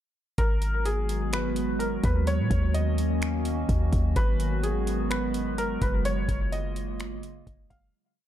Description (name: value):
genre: hip hop, atmospheric cloud-rap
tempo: 127 BPM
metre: 4/4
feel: half-time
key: G# dorian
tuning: A4 = 440 Hz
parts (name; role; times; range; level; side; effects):
- felt-muted upright piano; melody; 0.4-7.9 s; G#4 to E#5; -33 LUFS; left 1 dB; low-pass filter, ping-pong delay
- warbly tape-like pad; sustained chords; 0.7-7.9 s; C#3 to F#4; -30 LUFS; right 1 dB; chorus, built-in reverb, sidechain pumping
- warm 808-style bass; bass; 0.4-7.9 s; F#1 to A#2; -28 LUFS; equal; none
- booming analog drum machine; drums; 0.4-7.9 s; finger snaps, hi-hat, kick drum; -29 LUFS; equal; none
room: little or no reverb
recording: dark, warm production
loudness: -24 LUFS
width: side -11 dB against mid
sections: 0.4-7.9 verse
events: fade-out 6.1-7.9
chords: 0.4 G#m7; 2.3 D#m7; 4.2 G#m7; 6.1 F#maj9